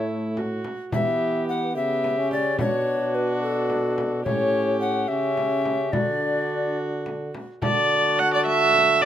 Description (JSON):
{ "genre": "classical, renaissance-style consort dance", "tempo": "72 BPM (dotted quarters)", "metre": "6/8", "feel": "straight", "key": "D major", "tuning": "A4 = 440 Hz", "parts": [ { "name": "mellow tenor recorder", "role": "melody", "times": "0.0-9.1 s", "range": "A4 to A5", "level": "-25 LUFS", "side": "left 3 dB", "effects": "none" }, { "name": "warm viola", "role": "second line", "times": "0.0-9.1 s", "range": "E4 to F#5", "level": "-24 LUFS", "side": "right 3 dB", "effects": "none" }, { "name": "bright trombone", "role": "accompaniment", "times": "0.0-9.1 s", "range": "A3 to F#4", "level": "-29 LUFS", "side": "left 2 dB", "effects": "none" }, { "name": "warm trombone", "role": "bass", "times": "0.0-9.1 s", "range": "A2 to E3", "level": "-30 LUFS", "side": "right 1 dB", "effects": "none" }, { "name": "frame drum", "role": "percussion", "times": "0.4-9.1 s", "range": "none", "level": "-31 LUFS", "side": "equal", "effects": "none" } ], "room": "moderate stone room reverb, RT60 1.4 s", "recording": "close, detailed microphones", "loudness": "-21 LUFS", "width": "side -10 dB against mid", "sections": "0.0-7.6 A section; 7.6-9.1 A section", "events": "none", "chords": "0.0 A5; 0.9 Em; 2.6 Bm; 4.3 A7; 5.9 D" }